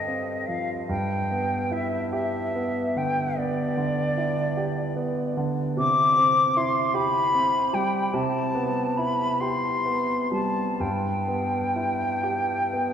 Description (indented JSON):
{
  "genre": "classical, impressionist duo for flute and grand piano",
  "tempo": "41-52 BPM (dotted quarters)",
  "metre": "12/8",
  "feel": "rubato",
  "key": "G mixolydian",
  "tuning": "A4 = 440 Hz",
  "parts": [
    { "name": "concert flute", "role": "melody", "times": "0.0-12.9 s", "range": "D5 to D6", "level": "-24 LUFS", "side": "left 2 dB", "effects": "none" },
    { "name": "warm grand piano", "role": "accompaniment", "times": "0.0-12.9 s", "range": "G2 to A4", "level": "-26 LUFS", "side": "right 1 dB", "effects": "none" }
  ],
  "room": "wet cathedral reverb, RT60 4.8 s",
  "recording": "recorded in a church or concert hall",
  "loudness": "-22 LUFS",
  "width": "side -8 dB against mid",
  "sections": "0.0-12.9 A section",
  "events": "none",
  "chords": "0.0 F9/G; 0.9 G6; 5.8 Cadd9; 8.1 Cmaj7; 10.8 G6"
}